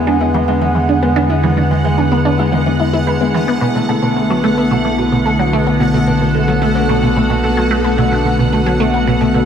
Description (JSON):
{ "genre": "ambient, sequencer-driven space music", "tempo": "110 BPM", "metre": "4/4", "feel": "straight", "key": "B dorian", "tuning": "A4 = 437 Hz", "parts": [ { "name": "evolving wavetable pad", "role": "sustained chords", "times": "0.0-9.5 s", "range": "D3 to B4", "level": "-17 LUFS", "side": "equal", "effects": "chorus, built-in reverb, phaser" }, { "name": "Celtic harp", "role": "arpeggios", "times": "0.0-9.5 s", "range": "G#3 to D4", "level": "-18 LUFS", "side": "left 4 dB", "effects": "auto-pan, analog delay" }, { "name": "resonant blip pluck", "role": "riff", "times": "0.0-9.4 s", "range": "B2 to B4", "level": "-18 LUFS", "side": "right 3 dB", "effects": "phaser, lush chorus, analog delay, shimmer reverb" }, { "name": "round analog bass", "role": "bass", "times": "0.0-9.5 s", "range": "B1 to E2", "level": "-21 LUFS", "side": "right 1 dB", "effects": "none" }, { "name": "bubbling stepped-filter texture", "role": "texture", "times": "0.0-9.5 s", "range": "F#5", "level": "-22 LUFS", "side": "right 3 dB", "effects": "chorus, built-in reverb, shimmer reverb" } ], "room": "wet lush hall reverb, RT60 3.1 s", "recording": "none", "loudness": "-12 LUFS", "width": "side -8 dB against mid", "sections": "0.0-9.5 A section", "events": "none", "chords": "0.0 E7; 3.6 Bm7" }